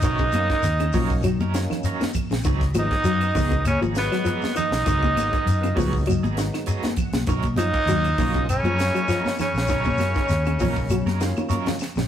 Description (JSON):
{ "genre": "afrobeat", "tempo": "99 BPM", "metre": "4/4", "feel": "swing 54% on 16ths", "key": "unclear", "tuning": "A4 = 440 Hz", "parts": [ { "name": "breathy tenor saxophone", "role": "melody", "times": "0.0-11.5 s", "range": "Cb4 to Eb4", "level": "-25 LUFS", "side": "right 1 dB", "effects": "none" }, { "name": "brilliant trumpet", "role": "second line", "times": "0.0-11.5 s", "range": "Cb5 to Eb5", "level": "-34 LUFS", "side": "right 2 dB", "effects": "none" }, { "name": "raspy baritone saxophone", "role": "second line", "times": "0.0-11.5 s", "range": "Cb3 to Eb3", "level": "-38 LUFS", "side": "left 3 dB", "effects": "none" }, { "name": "electric guitar through a small old amp", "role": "arpeggios", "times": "0.0-12.1 s", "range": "Db3 to Gb3", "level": "-28 LUFS", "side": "left 3 dB", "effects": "none" }, { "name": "electric guitar at the edge of break-up", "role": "stabs", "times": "0.0-11.7 s", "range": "Gb3 to Bb4", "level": "-33 LUFS", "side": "right 5 dB", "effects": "tremolo" }, { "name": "fingered electric bass", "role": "bass", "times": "0.0-12.1 s", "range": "Ab1 to Gb2", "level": "-25 LUFS", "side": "equal", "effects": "none" }, { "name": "tight funk drum kit", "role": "drums", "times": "0.0-12.1 s", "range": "hi-hat, kick drum, snare drum", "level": "-28 LUFS", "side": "equal", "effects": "none" }, { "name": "shekere", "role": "percussion", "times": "0.0-12.1 s", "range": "none", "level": "-30 LUFS", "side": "left 1 dB", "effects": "none" }, { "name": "percussive tonewheel organ", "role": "accompaniment", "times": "0.3-11.8 s", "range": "Gb3 to Ab5", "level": "-35 LUFS", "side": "right 2 dB", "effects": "slow rotary speaker, chorus vibrato" }, { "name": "claves", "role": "percussion", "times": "0.3-12.0 s", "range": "none", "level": "-42 LUFS", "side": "right 4 dB", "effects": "none" }, { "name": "congas", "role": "percussion", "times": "0.3-12.1 s", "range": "none", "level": "-30 LUFS", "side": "equal", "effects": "none" } ], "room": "moderate stone room reverb, RT60 1.2 s", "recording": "rough rehearsal-room recording, tube saturation", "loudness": "-20 LUFS", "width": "side -10 dB against mid", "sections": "0.0-12.1 A section", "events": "tonewheel organ fill 6.4-7.3; drum fill 11.4-12.1", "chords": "0.0 Cbmaj9; 2.4 Db9sus4; 7.3 Cbmaj9", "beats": "| 0.03 0.64 1.24 1.84 | 2.45 3.05 3.65 4.26 | 4.86 5.46 6.07 6.67 | 7.28 7.88 8.48 9.09 | 9.69 10.30 10.90 11.51" }